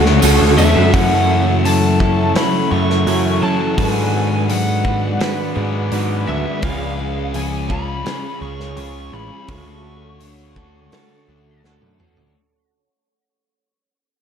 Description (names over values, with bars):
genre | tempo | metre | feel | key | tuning
rock, shoegaze and dream pop | 84 BPM | 4/4 | straight | F# minor | A4 = 439 Hz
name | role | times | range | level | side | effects
lead guitar through a small cranked amp | melody | 0.0-11.6 s | E5 to C#6 | -23 LUFS | left 2 dB | overdrive, ping-pong delay
deep dark ambient pad | sustained chords | 0.0-12.3 s | G#4 to C#6 | -27 LUFS | left 1 dB | chorus, built-in reverb
picked twelve-string acoustic guitar | arpeggios | 0.0-12.4 s | E3 to F#4 | -28 LUFS | left 6 dB | none
direct-recorded clean electric guitar | riff | 0.0-12.3 s | C#3 to B4 | -22 LUFS | right 9 dB | reverse reverb
raw garage guitar | riff | 0.0-6.6 s | F#2 to D4 | -24 LUFS | equal | overdrive
thick fuzz guitar | riff | 0.0-12.3 s | F#2 to D4 | -22 LUFS | left 9 dB | distortion, wide subtle chorus
growling picked electric bass | bass | 0.0-12.3 s | A1 to F#3 | -19 LUFS | equal | overdrive
loose indie drum kit | drums | 0.1-12.3 s | hi-hat, kick drum, snare drum, toms | -23 LUFS | equal | none
tambourine | percussion | 0.2-0.7 s | none | -26 LUFS | right 12 dB | none
room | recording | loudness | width
moderate plate reverb, RT60 1.4 s, small room ambience | dreamy mix soaked in reverb | -14 LUFS | side -8 dB against mid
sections
0.9-12.4 A section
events
fade-out 0.9-12.4; drum fill 11.6-12.4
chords
0.0 Dmaj7; 0.9 F#m7; 3.8 G#m7b5; 6.6 C#; 9.5 Dmaj7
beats
0.22 | 0.93 1.64 2.35 3.06 | 3.78 4.49 5.20 5.92 | 6.63 7.34 8.06 8.77 | 9.49 10.20 10.92 11.63